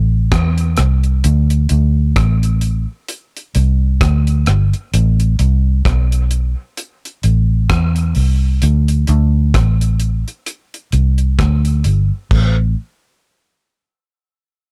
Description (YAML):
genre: dub reggae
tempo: 65 BPM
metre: 4/4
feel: swing 57% on 16ths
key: unclear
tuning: A4 = 441 Hz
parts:
  - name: vintage muted fingered electric bass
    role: bass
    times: 0.0-12.7 s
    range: G1 to E2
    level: -15 LUFS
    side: equal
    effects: none
  - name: deep reggae drum kit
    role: drums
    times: 0.3-12.6 s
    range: crash cymbal, hi-hat, kick drum, rim click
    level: -22 LUFS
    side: equal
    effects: none
room: little or no reverb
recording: none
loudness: -15 LUFS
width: mono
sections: 0.0-12.3 A section; 12.3-14.7 B section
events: none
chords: none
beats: 0.32 | 1.24 2.16 3.09 4.01 | 4.93 5.85 6.78 7.70 | 8.62 9.54 10.47 11.39 | 12.31